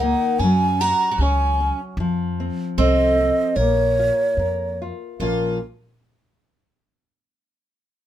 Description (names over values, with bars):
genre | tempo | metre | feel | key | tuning
fado-style ballad | 76 BPM | 2/4 | rubato | Bb minor | A4 = 443 Hz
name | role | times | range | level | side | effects
breathy bass bansuri | melody | 0.0-5.6 s | Bb4 to Bb5 | -20 LUFS | right 1 dB | none
picked twelve-string acoustic guitar | second line | 0.0-5.6 s | Bb3 to Gb4 | -27 LUFS | right 4 dB | none
nylon-string guitar | accompaniment | 0.0-5.6 s | Bb2 to Db5 | -24 LUFS | left 2 dB | none
upright bass | bass | 0.0-5.6 s | Bb1 to Gb2 | -23 LUFS | equal | none
room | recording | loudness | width
light reverb | minimal, uncompressed stereo recording | -18 LUFS | side -11 dB against mid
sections
0.0-5.2 A section; 5.2-6.8 B section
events
none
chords
0.4 Gb5; 2.0 F; 3.6 Bbm